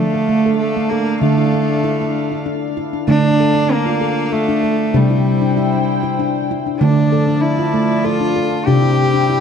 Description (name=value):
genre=world meditative, meditative tuned percussion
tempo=97 BPM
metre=3/4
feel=straight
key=D minor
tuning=A4 = 440 Hz
part: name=rich cello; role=melody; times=0.0-9.4 s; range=G3 to G4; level=-18 LUFS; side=equal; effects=none
part: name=dark chamber string section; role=sustained chords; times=0.0-9.4 s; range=F3 to A5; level=-24 LUFS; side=left 2 dB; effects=none
part: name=handpan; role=arpeggios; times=0.0-9.4 s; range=C3 to A4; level=-16 LUFS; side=equal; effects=ping-pong delay
room=wet echo chamber reverb, RT60 1.6 s, studio ambience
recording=dark, warm production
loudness=-14 LUFS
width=side -7 dB against mid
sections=0.0-3.1 A section; 3.1-9.4 B section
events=none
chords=0.0 Dm; 4.9 C; 6.8 Dm; 8.7 C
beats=0.60 | 1.22 1.84 2.46 | 3.08 3.70 4.32 | 4.95 5.57 6.19 | 6.81 7.43 8.05 | 8.68 9.30